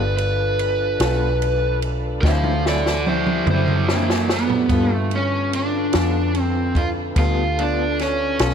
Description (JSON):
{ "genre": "slow blues", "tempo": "49 BPM (dotted quarters)", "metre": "12/8", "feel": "straight", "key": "G mixolydian", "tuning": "A4 = 439 Hz", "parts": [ { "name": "overdriven electric guitar", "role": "melody", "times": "0.0-8.5 s", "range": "G3 to F5", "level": "-21 LUFS", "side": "right 2 dB", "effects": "none" }, { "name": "electric guitar through a small old amp", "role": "accompaniment", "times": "0.0-8.5 s", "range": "D3 to A4", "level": "-28 LUFS", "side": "left 5 dB", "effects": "tremolo, slapback echo" }, { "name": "tonewheel organ", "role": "sustained chords", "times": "0.0-8.5 s", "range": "D3 to D5", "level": "-30 LUFS", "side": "equal", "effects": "slow rotary speaker, chorus vibrato" }, { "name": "vintage muted fingered electric bass", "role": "bass", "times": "0.0-8.5 s", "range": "G1 to G2", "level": "-23 LUFS", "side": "equal", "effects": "none" }, { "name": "compact cocktail drum kit", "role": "drums", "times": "0.2-8.5 s", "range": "kick drum, ride cymbal, snare drum, toms", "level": "-24 LUFS", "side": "equal", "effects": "none" } ], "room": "moderate lush hall reverb, RT60 2.9 s", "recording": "big arena sound", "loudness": "-17 LUFS", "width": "side -7 dB against mid", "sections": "0.0-4.7 A section; 4.7-8.5 B section", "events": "overdriven electric guitar solo 0.0-4.7; drum fill 2.2-4.7", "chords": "0.0 G9; 2.2 D9; 4.7 G9", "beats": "1.01 2.24 3.47 | 4.70 5.93 7.17 8.40" }